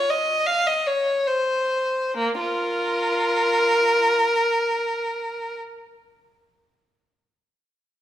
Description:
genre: classical, baroque-style suite movement for unaccompanied violin.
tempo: free time.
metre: none.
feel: none.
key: Bb minor.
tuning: A4 = 440 Hz.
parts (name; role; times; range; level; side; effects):
rich violin; solo; 0.0-5.6 s; Bb3 to F5; -20 LUFS; equal; none.
room: moderate recital hall reverb, RT60 1.6 s.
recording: minimal, uncompressed stereo recording.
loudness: -20 LUFS.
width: side -11 dB against mid.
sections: 0.0-2.1 A section; 2.1-7.5 B section.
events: slowing down 0.0-2.1.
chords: none.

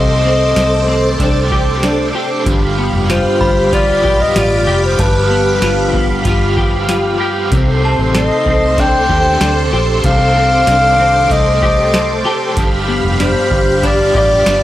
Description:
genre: dream pop.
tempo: 95 BPM.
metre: 4/4.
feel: straight.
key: C dorian.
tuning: A4 = 439 Hz.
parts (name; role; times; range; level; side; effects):
dark clarinet; melody; 0.0-14.6 s; B4 to G5; -14 LUFS; left 2 dB; analog delay.
cranked stack guitar; accompaniment; 0.0-14.6 s; G2 to G4; -23 LUFS; right 4 dB; overdrive, tremolo, analog chorus.
string machine, violins; sustained chords; 0.0-14.6 s; G4 to D6; -18 LUFS; equal; ensemble chorus.
semi-hollow electric guitar; arpeggios; 0.0-14.6 s; G2 to G4; -19 LUFS; left 2 dB; ensemble chorus, analog delay.
vintage muted fingered electric bass; bass; 0.0-14.6 s; F1 to Eb2; -18 LUFS; equal; transformer saturation.
booming analog drum machine; drums; 0.6-14.6 s; hi-hat, kick drum, snare drum, tambourine; -17 LUFS; equal; none.
synth chime; texture; 3.4-12.8 s; G5 to B5; -26 LUFS; equal; ensemble chorus, analog delay.
room: digital ambience.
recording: dry, gritty hardware recording, transformer saturation.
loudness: -11 LUFS.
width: side -14 dB against mid.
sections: 0.0-14.6 A section.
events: none.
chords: 0.0 Cm69; 2.5 G7; 7.5 Cm69; 12.6 G7.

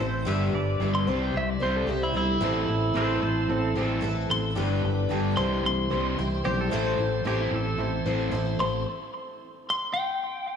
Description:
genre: folk rock and heartland rock.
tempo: 112 BPM.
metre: 4/4.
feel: straight.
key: A minor.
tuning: A4 = 438 Hz.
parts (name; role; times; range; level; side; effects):
twelve-string electric guitar; melody; 0.0-10.6 s; E4 to C6; -30 LUFS; equal; analog delay.
pedal steel guitar; second line; 0.0-8.4 s; C4 to E5; -35 LUFS; right 1 dB; analog chorus, analog delay.
picked twelve-string acoustic guitar; accompaniment; 0.0-8.9 s; A2 to C5; -31 LUFS; left 6 dB; none.
overdriven semi-hollow guitar; riff; 0.0-8.8 s; G2 to C4; -31 LUFS; right 1 dB; none.
fingered electric bass; bass; 0.0-8.8 s; G1 to C2; -29 LUFS; right 1 dB; none.
tonewheel organ; sustained chords; 2.1-8.8 s; A3 to D5; -38 LUFS; right 1 dB; slow rotary speaker.
bright concert grand piano; accompaniment; 2.4-8.8 s; D4 to C5; -36 LUFS; right 8 dB; none.
room: wet plate reverb, RT60 3.2 s.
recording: dreamy mix soaked in reverb, small room ambience.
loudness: -24 LUFS.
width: side -7 dB against mid.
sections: 0.0-10.6 A section.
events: clean electric guitar solo 0.0-10.6; stop 8.9-10.6.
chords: 0.3 G; 1.1 C; 2.4 Am; 4.6 G; 5.4 C; 6.7 Am; 8.9 N.C..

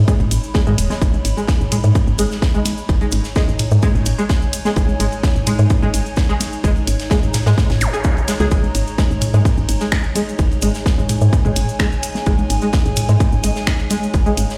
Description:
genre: minimal techno.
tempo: 128 BPM.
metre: 4/4.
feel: straight.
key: G# minor.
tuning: A4 = 440 Hz.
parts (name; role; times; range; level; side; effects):
woody FM bass; bass; 0.0-14.5 s; D#1 to G#2; -19 LUFS; equal; sidechain pumping.
warbly tape-like pad; texture; 0.0-14.6 s; D#4 to B5; -31 LUFS; equal; chorus, built-in reverb, phaser, sidechain pumping.
string-like resonator pluck; riff; 0.1-14.3 s; G#3 to G#4; -26 LUFS; equal; ensemble chorus, sidechain pumping, delay.
electronic kick drum; drums; 0.1-14.2 s; none; -19 LUFS; equal; none.
modern studio drum kit; drums; 0.1-14.6 s; ride cymbal, snare drum; -35 LUFS; equal; sidechain pumping on cymbals, high-pass filter on cymbals, high-pass filter on snare, high-pass filter on room.
cabasa; percussion; 0.1-14.6 s; none; -34 LUFS; equal; none.
electronic toms and congas; percussion; 0.2-14.0 s; none; -26 LUFS; equal; delay.
house drum kit; drums; 0.3-14.5 s; finger snaps, hi-hat; -26 LUFS; equal; none.
zap; sound effects; 7.8-7.9 s; none; -29 LUFS; equal; none.
pulsing gated texture; texture; 8.5-14.6 s; G#3 to G#4; -34 LUFS; equal; none.
room: light reverb.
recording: played on a big sound system in a bare room, stone room reverb.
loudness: -17 LUFS.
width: mono.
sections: 0.0-14.6 A section.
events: fade-in on ambient pad 0.0-14.6.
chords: 0.0 G#sus4.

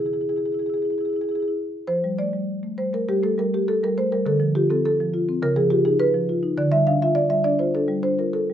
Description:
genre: classical, contemporary piece for solo marimba.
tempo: 91-105 BPM.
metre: 4/4.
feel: rubato.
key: F major.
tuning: A4 = 439 Hz.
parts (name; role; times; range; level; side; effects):
marimba with medium mallets; solo; 0.0-8.5 s; C3 to F5; -20 LUFS; equal; none.
room: light reverb.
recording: minimal, uncompressed stereo recording.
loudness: -20 LUFS.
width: side -10 dB against mid.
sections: 0.0-1.9 A section; 1.9-8.5 B section.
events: none.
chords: 0.0 Caug7; 1.9 Fadd9; 4.3 Dm7; 5.4 Db9; 6.6 Dmadd11.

